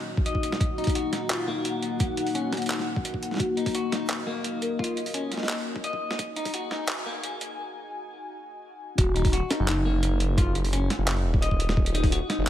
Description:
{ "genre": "half-time drum and bass", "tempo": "172 BPM", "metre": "4/4", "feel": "half-time", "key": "Eb minor", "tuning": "A4 = 440 Hz", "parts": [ { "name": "dark analog pad", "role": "sustained chords", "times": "0.0-9.0 s", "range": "Bb3 to Ab5", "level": "-32 LUFS", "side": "left 3 dB", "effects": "chorus, sidechain pumping" }, { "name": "boom bap sampler-style drum kit", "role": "drums", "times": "0.0-12.5 s", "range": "handclaps, hi-hat, snare drum", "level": "-31 LUFS", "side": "right 1 dB", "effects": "overdrive" }, { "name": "electronic kick drum", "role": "drums", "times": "0.2-6.5, 9.0-12.1 s", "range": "none", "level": "-25 LUFS", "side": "equal", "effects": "overdrive" }, { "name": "clean electric guitar", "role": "arpeggios", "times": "0.3-12.5 s", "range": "Bb3 to Eb5", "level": "-33 LUFS", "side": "left 3 dB", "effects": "vintage 12-bit sampler grit, low-pass filter, dub echo" }, { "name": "marimba with soft mallets", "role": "melody", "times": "3.4-5.0, 9.0-10.2 s", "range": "Eb4 to Bb4", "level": "-33 LUFS", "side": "left 1 dB", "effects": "low-pass filter, dub echo" }, { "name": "phased detuned saw bass", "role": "bass", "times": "9.0-12.5 s", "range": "Eb1 to Gb1", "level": "-25 LUFS", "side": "equal", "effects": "phaser" } ], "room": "light reverb", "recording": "high-pass filter", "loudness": "-24 LUFS", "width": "side -12 dB against mid", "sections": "0.0-9.0 A section; 9.0-12.5 B section", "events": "build-up 0.0-9.0; filter sweep on marimba 0.0-9.0; filter sweep 0.0-9.0; break 7.6-9.0; drop 9.0-12.5", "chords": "0.0 Ebm" }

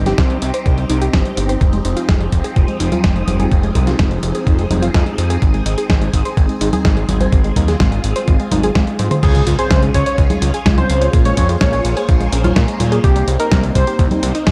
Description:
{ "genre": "italo disco", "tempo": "126 BPM", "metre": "4/4", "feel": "straight", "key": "unclear", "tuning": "A4 = 440 Hz", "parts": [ { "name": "phased string machine", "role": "sustained chords", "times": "0.0-14.5 s", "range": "F3 to Db5", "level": "-26 LUFS", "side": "equal", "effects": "ensemble chorus, phaser" }, { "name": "warbly dusty pluck", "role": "arpeggios", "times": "0.0-14.5 s", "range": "G3 to Db5", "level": "-25 LUFS", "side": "equal", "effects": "chorus, digital delay" }, { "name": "fat analog bass", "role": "bass", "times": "0.0-14.5 s", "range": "F1 to Bb2", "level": "-20 LUFS", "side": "equal", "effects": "none" }, { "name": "dusty soul sampler-style drum kit", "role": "drums", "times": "0.1-14.5 s", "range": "congas, crash cymbal, hi-hat, snare drum, toms", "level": "-23 LUFS", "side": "equal", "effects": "none" }, { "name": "electronic kick drum", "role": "drums", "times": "0.2-14.5 s", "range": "none", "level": "-17 LUFS", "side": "equal", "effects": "none" }, { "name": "unison lead", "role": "melody", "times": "9.2-14.0 s", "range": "G4 to Db5", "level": "-23 LUFS", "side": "equal", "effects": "vintage 12-bit sampler grit, digital delay" }, { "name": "impact", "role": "sound effects", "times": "9.3-11.1 s", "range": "none", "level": "-26 LUFS", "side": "equal", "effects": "none" } ], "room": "light reverb, digital ambience", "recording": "dark, warm production", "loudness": "-15 LUFS", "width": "mono", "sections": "0.0-9.2 A section; 9.2-14.5 B section", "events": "drum fill 9.0; impact 9.2-11.1", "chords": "0.0 Cm; 1.6 Fm7; 5.4 Ab; 9.2 Db; 11.1 Bbm7; 13.0 Cm7" }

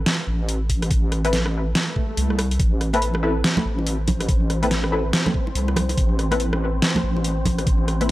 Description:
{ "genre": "deep dubstep", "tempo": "142 BPM", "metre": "4/4", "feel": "swing 61% on 16ths, half-time", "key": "A minor", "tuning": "A4 = 439 Hz", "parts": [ { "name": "deep soft wobble bass", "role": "bass", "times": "0.0-8.1 s", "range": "A1 to C2", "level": "-22 LUFS", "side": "equal", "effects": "chorus" }, { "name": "dubstep drum kit", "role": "drums", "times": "0.1-8.1 s", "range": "hi-hat, rim click, snare drum", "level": "-24 LUFS", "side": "equal", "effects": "overdrive" }, { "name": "electronic kick drum", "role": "drums", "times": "0.7-7.8 s", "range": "none", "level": "-21 LUFS", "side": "equal", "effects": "none" }, { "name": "filtered dub chord stab", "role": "stabs", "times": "1.2-8.1 s", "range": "C4 to B4", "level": "-26 LUFS", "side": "left 2 dB", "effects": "ensemble chorus, dub echo" }, { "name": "swell", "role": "sound effects", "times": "1.9-2.6 s", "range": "none", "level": "-30 LUFS", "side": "right 5 dB", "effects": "none" }, { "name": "wind-like tuned noise texture", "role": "texture", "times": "3.5-8.1 s", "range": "C4 to C5", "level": "-32 LUFS", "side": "left 1 dB", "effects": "built-in reverb" }, { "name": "congas and bongos", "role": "percussion", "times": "2.9-8.1 s", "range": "none", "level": "-27 LUFS", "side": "right 2 dB", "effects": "dub echo" } ], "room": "digital ambience", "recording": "dry, gritty hardware recording, cassette tape", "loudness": "-19 LUFS", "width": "side -17 dB against mid", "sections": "0.0-8.1 A section", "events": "swell 1.9-2.6", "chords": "0.0 Am" }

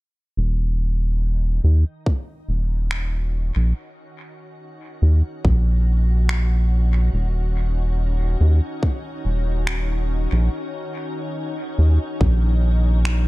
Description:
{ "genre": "ambient dub", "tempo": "71 BPM", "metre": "4/4", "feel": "swing 54% on 16ths", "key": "Eb minor", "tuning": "A4 = 441 Hz", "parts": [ { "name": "soft additive organ-like pad", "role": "sustained chords", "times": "1.1-13.3 s", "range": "Eb3 to Gb4", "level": "-32 LUFS", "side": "left 1 dB", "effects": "ensemble chorus, built-in reverb" }, { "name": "round analog bass", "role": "bass", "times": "0.4-13.3 s", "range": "Eb1 to Eb2", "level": "-17 LUFS", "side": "equal", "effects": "tube saturation" }, { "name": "electronic kick drum", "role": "drums", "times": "2.1-12.4 s", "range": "none", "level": "-19 LUFS", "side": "equal", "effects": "none" }, { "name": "electronic finger snaps", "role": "drums", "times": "2.9-13.2 s", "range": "none", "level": "-30 LUFS", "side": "equal", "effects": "dub echo" } ], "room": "digital ambience", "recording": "echo-heavy mix", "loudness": "-18 LUFS", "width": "side -20 dB against mid", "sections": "0.4-13.3 A section", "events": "fade-in on ambient pad 0.4-13.3", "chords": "0.4 Ebm7" }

